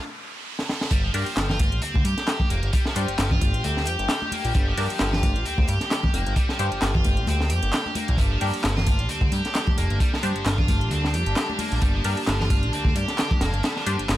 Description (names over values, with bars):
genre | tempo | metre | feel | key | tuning
breakbeat, breaks | 132 BPM | 4/4 | swing 55% on 16ths | G minor | A4 = 438 Hz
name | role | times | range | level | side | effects
riser | sound effects | 0.0-0.9 s | none | -34 LUFS | right 3 dB | none
crunchy breakbeat drum kit | drums | 0.6-14.2 s | hi-hat, kick drum, snare drum | -24 LUFS | equal | none
clear studio string section | sustained chords | 0.9-14.2 s | D3 to G4 | -32 LUFS | left 2 dB | sidechain pumping
scooped high-gain guitar | riff | 0.9-14.2 s | F3 to G4 | -29 LUFS | right 2 dB | distortion, tape echo
fat analog bass | bass | 0.9-14.2 s | F1 to G2 | -25 LUFS | equal | none
house drum kit | drums | 0.9-14.2 s | handclaps, hi-hat | -33 LUFS | equal | overdrive
band-passed chord stab | stabs | 1.1-14.0 s | D4 to C5 | -31 LUFS | left 2 dB | phaser, wide subtle chorus, cassette tape, tape echo
congas | percussion | 1.5-13.4 s | none | -32 LUFS | left 2 dB | none
room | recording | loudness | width
light reverb | none | -21 LUFS | side -14 dB against mid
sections
0.9-14.2 A section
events
riser 0.0-0.9; break 0.0-0.9; drum fill 0.6-0.9; drop 0.9-14.2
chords
0.0 N.C.; 0.9 Gm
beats
0.01 0.46 | 0.91 1.37 1.82 2.28 | 2.73 3.19 3.64 4.10 | 4.55 5.00 5.46 5.91 | 6.37 6.82 7.28 7.73 | 8.19 8.64 9.10 9.55 | 10.01 10.46 10.91 11.37 | 11.82 12.28 12.73 13.19 | 13.64 14.10